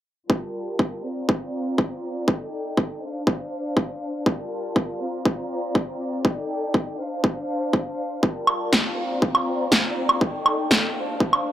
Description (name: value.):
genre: filtered disco house.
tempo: 121 BPM.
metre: 4/4.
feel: straight.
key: G minor.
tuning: A4 = 440 Hz.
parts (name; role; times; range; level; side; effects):
dark studio violin section; sustained chords; 0.3-11.5 s; G3 to Bb5; -28 LUFS; left 1 dB; sidechain pumping, low-pass filter.
electronic kick drum; drums; 0.3-11.3 s; none; -21 LUFS; equal; high-pass filter on kick, high-pass filter on room.
electronic woodblock and snare drum; drums; 8.5-11.4 s; none; -20 LUFS; right 1 dB; sidechain pumping on perc.
room: light reverb.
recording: dry, gritty hardware recording.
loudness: -22 LUFS.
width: side -12 dB against mid.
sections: 0.3-11.5 A section.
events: filter sweep on violin section 0.3-11.5.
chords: 0.3 Gm9; 1.0 C9sus4; 2.3 Ebmaj7#11; 3.0 Dm7; 4.3 Gm9; 5.0 C9sus4; 6.2 Ebmaj7#11; 7.0 Dm7; 8.2 Gm9; 9.0 C9sus4; 10.2 Ebmaj7#11; 11.0 Dm7.